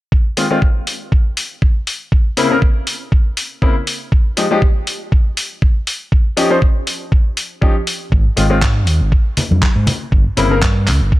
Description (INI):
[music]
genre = nu-disco, nu disco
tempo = 120 BPM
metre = 4/4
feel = swing 55% on 16ths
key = Ab major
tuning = A4 = 440 Hz
[part]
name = electronic kick drum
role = drums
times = 0.1-11.2 s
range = none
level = -13 LUFS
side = equal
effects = none
[part]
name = clear concert grand piano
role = accompaniment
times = 0.4-10.6 s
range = Db3 to C5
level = -17 LUFS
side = left 2 dB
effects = sidechain pumping, slapback echo
[part]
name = dusty soul sampler-style drum kit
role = drums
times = 0.4-11.0 s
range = handclaps, hi-hat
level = -20 LUFS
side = left 1 dB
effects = none
[part]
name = overdriven fingered electric bass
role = bass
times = 8.1-11.1 s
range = G1 to Ab2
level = -15 LUFS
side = equal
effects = none
[part]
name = congas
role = percussion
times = 9.4-10.0 s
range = none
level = -20 LUFS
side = left 2 dB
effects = none
[sound]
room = small room ambience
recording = none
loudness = -13 LUFS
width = side -17 dB against mid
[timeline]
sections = 0.1-11.2 A section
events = none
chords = 0.1 Ab6; 1.9 C7b9; 4.1 Fm9; 5.9 Eb9; 8.1 Ab5; 9.9 C7(no3)/G